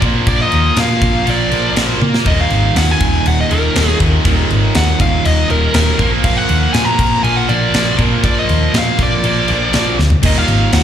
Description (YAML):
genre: hard rock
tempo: 120 BPM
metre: 4/4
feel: straight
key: unclear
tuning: A4 = 440 Hz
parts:
  - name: dark smooth lead guitar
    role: melody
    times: 0.0-10.8 s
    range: Bb4 to Bb5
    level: -18 LUFS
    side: equal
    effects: overdrive, slapback echo, digital delay
  - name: cranked stack guitar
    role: riff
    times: 0.0-10.8 s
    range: Eb2 to Bb3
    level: -20 LUFS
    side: right 12 dB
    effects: overdrive, slapback echo
  - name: distorted electric guitar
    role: riff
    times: 0.0-10.8 s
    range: Eb2 to Bb3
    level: -22 LUFS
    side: left 11 dB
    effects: overdrive, slapback echo
  - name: distorted electric guitar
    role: riff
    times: 0.0-10.8 s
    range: Eb2 to Bb3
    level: -22 LUFS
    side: equal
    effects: distortion, slapback echo
  - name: hollow-body short-scale picked electric bass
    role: bass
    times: 0.0-10.8 s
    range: Eb1 to Bb2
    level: -16 LUFS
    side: equal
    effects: none
  - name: tight metal drum kit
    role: drums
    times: 0.0-10.8 s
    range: crash cymbal, kick drum, snare drum, toms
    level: -18 LUFS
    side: equal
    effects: none
room: light reverb, small room ambience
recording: live gig heard through the venue's PA, club ambience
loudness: -11 LUFS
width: side -9 dB against mid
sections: 0.0-10.2 A section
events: drum fill 2.0, 10.0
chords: 0.0 Bb; 2.3 Eb5; 6.0 Bb; 10.2 Eb5